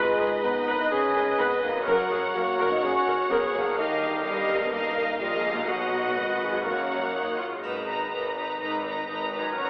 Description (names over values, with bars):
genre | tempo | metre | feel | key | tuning
cinematic, heroic adventure film score | 125 BPM | 4/4 | straight | G# dorian | A4 = 439 Hz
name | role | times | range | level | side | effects
rich symphonic violin section | melody | 0.0-9.7 s | D#5 to A#5 | -31 LUFS | equal | none
mellow clarinet | second line | 0.0-7.4 s | D#4 to B4 | -29 LUFS | equal | none
warm symphonic violin section | second line | 0.0-9.7 s | B4 to D#5 | -31 LUFS | equal | none
warm symphonic viola section | accompaniment | 0.0-9.7 s | D#4 to B4 | -30 LUFS | equal | none
mellow French horn section | sustained chords | 0.0-7.4 s | D#3 to D#4 | -29 LUFS | equal | none
concert harp | arpeggios | 0.0-9.7 s | F#2 to A#5 | -36 LUFS | equal | none
clear symphonic double bass section | bass | 0.0-9.7 s | F#1 to B1 | -39 LUFS | equal | none
rich studio cello section | bass | 0.0-9.7 s | F#2 to B2 | -38 LUFS | equal | none
triangle | percussion | 7.6-8.6 s | none | -47 LUFS | equal | none
room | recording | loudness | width
wet scoring stage reverb, RT60 2.1 s | heard from further back in the room, telephone sound | -23 LUFS | side -28 dB against mid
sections
0.0-7.6 A section; 7.6-9.7 B section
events
none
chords
0.0 G#madd9; 1.9 F#; 3.8 D#add9/G; 5.7 B; 6.7 F#; 7.6 G#madd9